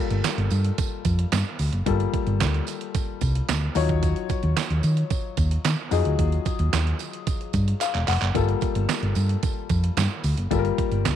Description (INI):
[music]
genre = early-eighties boogie funk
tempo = 111 BPM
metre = 4/4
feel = straight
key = unclear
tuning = A4 = 440 Hz
[part]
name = clear grand piano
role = accompaniment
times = 0.0-11.2 s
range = Gb3 to Gb5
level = -29 LUFS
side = left 13 dB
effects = none
[part]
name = hollow-body short-scale fingered electric bass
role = bass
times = 0.1-11.2 s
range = E1 to Eb3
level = -22 LUFS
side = equal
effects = none
[part]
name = detuned 8-bit digital drum machine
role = drums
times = 0.1-11.2 s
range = handclaps, hi-hat, kick drum, snare drum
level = -27 LUFS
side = right 4 dB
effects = overdrive
[part]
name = tambourine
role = percussion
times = 0.2-11.2 s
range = none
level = -38 LUFS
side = right 16 dB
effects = none
[sound]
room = little or no reverb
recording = 1960s-style stereo with parts hard left and right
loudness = -21 LUFS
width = side -10 dB against mid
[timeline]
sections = 0.0-11.2 A section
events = grand piano fill 7.5-8.4; drum fill 7.8-8.4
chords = 0.0 Gm9; 3.8 Ebm9; 8.4 Gm9